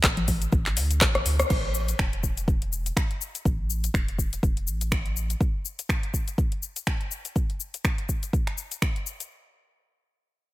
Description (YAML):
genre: afro house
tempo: 123 BPM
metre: 4/4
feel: swing 56% on 16ths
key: unclear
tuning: A4 = 440 Hz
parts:
  - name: round analog bass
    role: bass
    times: 0.0-5.3 s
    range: E1 to D2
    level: -28 LUFS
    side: equal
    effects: sidechain pumping
  - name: afro-pop drum kit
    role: drums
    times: 0.0-9.3 s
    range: crash cymbal, finger snaps, handclaps, hi-hat, rim click, shaker, toms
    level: -27 LUFS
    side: left 1 dB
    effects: none
  - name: electronic kick drum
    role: drums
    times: 0.0-8.9 s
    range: none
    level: -26 LUFS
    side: equal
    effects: none
room: little or no reverb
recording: none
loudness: -24 LUFS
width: side -17 dB against mid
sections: 0.0-1.5 A section; 1.5-9.3 B section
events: drop 0.0-1.5; drum fill 1.0-1.5; band accent 1.4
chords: none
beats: 0.04 0.53 1.01 | 1.50 1.99 2.48 2.96 | 3.45 3.94 4.43 4.92 | 5.40 5.89 6.38 6.87 | 7.36 7.84 8.33 8.82